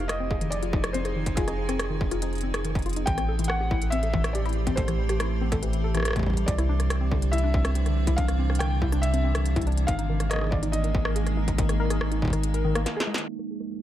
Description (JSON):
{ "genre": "IDM", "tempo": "141 BPM", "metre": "4/4", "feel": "straight", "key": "F dorian", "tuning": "A4 = 441 Hz", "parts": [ { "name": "felt-muted upright piano", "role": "melody", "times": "0.0-12.8 s", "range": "Ab4 to G5", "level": "-33 LUFS", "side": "equal", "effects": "dub echo" }, { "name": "icy glass pad", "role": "sustained chords", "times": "0.0-13.8 s", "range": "F2 to C5", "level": "-33 LUFS", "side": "right 2 dB", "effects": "chorus, built-in reverb" }, { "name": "warbly dusty pluck", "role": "arpeggios", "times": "0.0-13.2 s", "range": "D3 to Eb5", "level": "-32 LUFS", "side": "left 4 dB", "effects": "chorus, cassette tape, analog delay" }, { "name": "rubbery square bass", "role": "bass", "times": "0.0-12.9 s", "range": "F1 to C2", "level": "-26 LUFS", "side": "equal", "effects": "none" }, { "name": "industrial drum kit", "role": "drums", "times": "0.1-13.8 s", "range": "hi-hat, rim click, snare drum", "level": "-32 LUFS", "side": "equal", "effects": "none" }, { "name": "electronic kick drum", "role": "drums", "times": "0.3-12.3 s", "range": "none", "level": "-29 LUFS", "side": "equal", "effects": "distortion" } ], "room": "light reverb", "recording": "echo-heavy mix, low-pass filter", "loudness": "-23 LUFS", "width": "side -12 dB against mid", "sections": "0.0-13.3 A section", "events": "break 12.9-13.3; drum fill 12.9-13.3", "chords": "0.0 Fm7; 3.1 Am7; 6.5 Cadd9; 9.9 Absus2; 13.3 Fm7" }